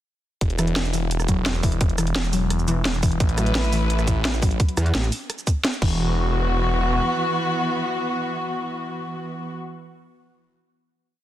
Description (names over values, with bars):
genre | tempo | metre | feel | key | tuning
dark technical drum and bass | 172 BPM | 4/4 | straight | unclear | A4 = 441 Hz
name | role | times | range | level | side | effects
phased detuned saw bass | bass | 0.4-7.0 s | E1 to A1 | -23 LUFS | equal | phaser, tube saturation, sidechain pumping
drum and bass drum kit | drums | 0.4-5.9 s | crash cymbal, hi-hat, rim click, shaker, snare drum | -26 LUFS | equal | none
electronic kick drum | drums | 0.4-5.9 s | none | -20 LUFS | equal | overdrive
warbly dusty pluck | arpeggios | 0.6-6.1 s | E3 to F#3 | -28 LUFS | left 2 dB | chorus, sidechain pumping, digital delay
warm chamber string section | sustained chords | 3.2-9.5 s | E3 to B4 | -24 LUFS | left 1 dB | sidechain pumping
metallic wobble bass | bass | 4.8-5.1 s | A1 to E2 | -20 LUFS | equal | distortion, chorus
room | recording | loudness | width
light reverb | dense, heavily limited modern master | -20 LUFS | side -12 dB against mid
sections
0.4-6.0 drop; 6.0-8.8 final hit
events
drop 0.4-6.0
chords
0.4 N.C.; 3.2 A5; 5.8 E5